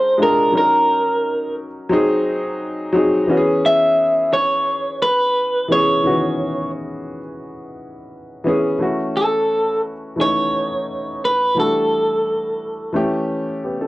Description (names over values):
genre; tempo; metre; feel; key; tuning
soul; 87 BPM; 4/4; straight; C# minor; A4 = 440 Hz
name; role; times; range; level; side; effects
electric guitar through a small old amp; melody; 0.0-12.9 s; A4 to E5; -16 LUFS; equal; cassette tape
dark baby grand piano; accompaniment; 0.0-13.9 s; D#3 to A#4; -20 LUFS; left 1 dB; cassette tape
room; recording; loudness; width
wet studio reverb, RT60 0.5 s; home recording on cassette; -16 LUFS; side -18 dB against mid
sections
0.0-8.8 A section; 8.8-13.9 B section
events
none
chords
0.0 A#7; 0.5 D#m7; 1.9 G#7; 3.3 C#m7; 8.8 F#m7; 11.6 Em11; 12.9 A7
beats
| 0.54 1.23 1.92 2.60 | 3.29 3.98 4.67 5.36 | 6.04 6.73 7.42 8.11 | 8.80 9.49 10.18 10.87 | 11.56 12.25 12.94 13.63